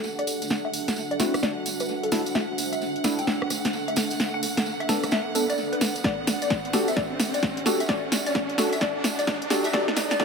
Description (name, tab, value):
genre	UK garage, two-step garage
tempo	130 BPM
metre	4/4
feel	swing 63% on 16ths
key	E minor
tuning	A4 = 438 Hz
part	clear chamber violin section	sustained chords	0.0-10.2 s	F#5	-35 LUFS	right 2 dB	sidechain pumping
part	tambourine	percussion	0.0-10.2 s	none	-34 LUFS	right 5 dB	none
part	riser	sound effects	0.1-10.2 s	none	-34 LUFS	right 1 dB	none
part	granular cloud pad	texture	0.0-10.2 s	D4 to F#5	-32 LUFS	equal	built-in reverb, sidechain pumping
part	hollow square pluck	melody	0.2-10.2 s	A4 to G5	-31 LUFS	left 2 dB	lush chorus, analog delay
part	house drum kit	drums	0.2-10.2 s	hi-hat, rim click, snare drum	-27 LUFS	equal	analog delay
part	percussive organ stab	stabs	1.2-10.2 s	B3 to A4	-28 LUFS	equal	wide subtle chorus, analog delay
part	electronic kick drum	drums	6.0-10.2 s	none	-33 LUFS	equal	none
room	wet spring reverb, RT60 1.7 s, digital ambience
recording	echo-heavy mix, high-pass filter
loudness	-23 LUFS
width	side -5 dB against mid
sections	0.0-10.2 A section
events	build-up 0.0-10.2; drum fill 0.0-10.2; filter sweep on synth pluck 0.0-10.2; riser 0.1-10.2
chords	0.0 Em11; 0.5 D9; 2.1 C69; 4.2 Bm7; 6.0 Em11; 7.9 D9; 9.5 C69